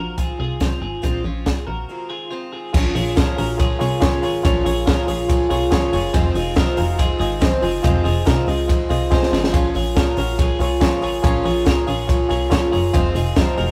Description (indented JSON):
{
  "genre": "jangly indie pop",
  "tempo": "141 BPM",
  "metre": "4/4",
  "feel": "straight",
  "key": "Bb minor",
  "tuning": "A4 = 440 Hz",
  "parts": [
    { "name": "picked twelve-string acoustic guitar", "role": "accompaniment", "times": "0.0-13.7 s", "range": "F2 to F4", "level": "-28 LUFS", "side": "equal", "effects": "none" },
    { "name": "twelve-string electric guitar", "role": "arpeggios", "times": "0.0-13.7 s", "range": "C4 to Bb4", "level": "-30 LUFS", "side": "equal", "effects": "none" },
    { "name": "plucky analog bass", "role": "bass", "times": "0.0-13.7 s", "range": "F1 to Db2", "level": "-26 LUFS", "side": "equal", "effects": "none" },
    { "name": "compact cocktail drum kit", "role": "drums", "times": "0.2-13.7 s", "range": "crash cymbal, hi-hat, kick drum, ride cymbal, snare drum", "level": "-22 LUFS", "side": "equal", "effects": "none" },
    { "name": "reed electric piano", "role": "accompaniment", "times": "2.7-13.7 s", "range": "F4 to Bb5", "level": "-25 LUFS", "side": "equal", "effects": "none" }
  ],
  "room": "moderate studio reverb, RT60 0.6 s",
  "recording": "rough rehearsal-room recording, warm saturation",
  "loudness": "-19 LUFS",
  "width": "mono",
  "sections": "0.0-2.7 A section; 2.7-13.7 B section",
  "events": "break 1.9-2.7; reed electric piano fill 8.7-9.5, 12.3-12.9; drum fill 9.1-9.5",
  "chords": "0.0 Fm7; 2.7 Bbm7; 6.1 Fm7; 9.5 Bbm7; 12.9 Fm7"
}